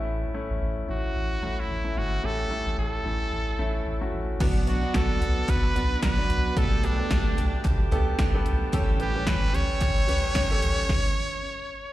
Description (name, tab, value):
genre	piano-driven pop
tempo	111 BPM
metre	4/4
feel	swing 56% on 16ths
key	unclear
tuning	A4 = 440 Hz
part	clear concert grand piano	accompaniment	0.0-10.9 s	A2 to E5	-32 LUFS	left 2 dB	slapback echo
part	warm sub bass	bass	0.0-10.8 s	G1 to B1	-28 LUFS	equal	none
part	brilliant trumpet	melody	0.9-11.9 s	D4 to C#5	-30 LUFS	right 1 dB	slapback echo
part	tonewheel organ	sustained chords	4.4-10.9 s	B4 to E6	-39 LUFS	right 1 dB	none
part	picked steel-string acoustic guitar	riff	4.4-11.4 s	A2 to G4	-32 LUFS	right 5 dB	slapback echo
part	house drum kit	drums	4.4-11.0 s	crash cymbal, hi-hat, kick drum, snare drum, toms	-26 LUFS	equal	none
part	group handclap	percussion	4.9-10.5 s	none	-45 LUFS	left 3 dB	none
room	studio reverb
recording	live gig heard through the venue's PA, recital hall reverb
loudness	-23 LUFS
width	side -15 dB against mid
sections	0.0-4.4 A section; 4.4-11.9 B section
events	stop 10.9-11.9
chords	0.0 A; 4.4 Bm; 6.6 Gadd9/B; 8.7 A7